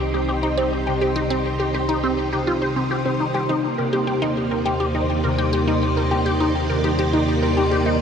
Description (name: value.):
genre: ambient, sequencer-driven space music.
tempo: 103 BPM.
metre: 4/4.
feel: straight.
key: unclear.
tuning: A4 = 441 Hz.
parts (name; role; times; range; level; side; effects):
string machine, full ensemble; sustained chords; 0.0-8.0 s; Bb3 to D5; -24 LUFS; right 2 dB; ensemble chorus, shimmer reverb.
concert harp; arpeggios; 0.0-8.0 s; C3 to C5; -26 LUFS; left 3 dB; auto-pan, ping-pong delay.
analog drone; bass; 0.0-8.0 s; C2 to Eb2; -26 LUFS; equal; chorus.
wind-like tuned noise texture; texture; 0.0-8.0 s; C5; -33 LUFS; right 5 dB; built-in reverb, shimmer reverb.
resonant blip pluck; riff; 0.1-8.0 s; C4 to C5; -22 LUFS; left 1 dB; phaser, ping-pong delay, shimmer reverb.
room: wet huge ambient reverb, RT60 7.2 s.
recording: none.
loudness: -18 LUFS.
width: side -7 dB against mid.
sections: 0.0-8.0 A section.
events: none.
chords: 0.0 Cmadd9; 3.3 Ebmaj7.